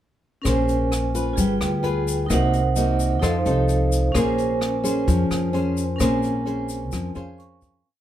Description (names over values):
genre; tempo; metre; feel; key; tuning
bossa nova; 130 BPM; 4/4; straight; Bb minor; A4 = 440 Hz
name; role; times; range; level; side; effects
nylon-string guitar; accompaniment; 0.4-7.8 s; C3 to C5; -24 LUFS; left 2 dB; none
vibraphone with medium hard mallets; accompaniment; 0.4-7.9 s; C4 to Db6; -25 LUFS; right 4 dB; none
upright bass; bass; 0.5-7.8 s; G1 to F2; -24 LUFS; equal; none
jazz brush drum kit; drums; 0.5-7.7 s; hi-hat, kick drum, rim click; -30 LUFS; equal; none
tube shaker; percussion; 0.5-7.8 s; none; -36 LUFS; left 7 dB; none
room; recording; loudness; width
light reverb; none; -19 LUFS; side -11 dB against mid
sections
0.4-7.9 A section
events
fade-out 6.0-7.9; vibraphone fill 6.9-7.9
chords
0.4 Bbm9; 1.4 G7b9; 2.3 Cm7b5; 3.2 F7; 4.1 Bbm9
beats
| 0.45 0.91 1.37 1.83 | 2.30 2.76 3.22 3.69 | 4.15 4.61 5.07 5.54 | 6.00 6.46 6.93 7.39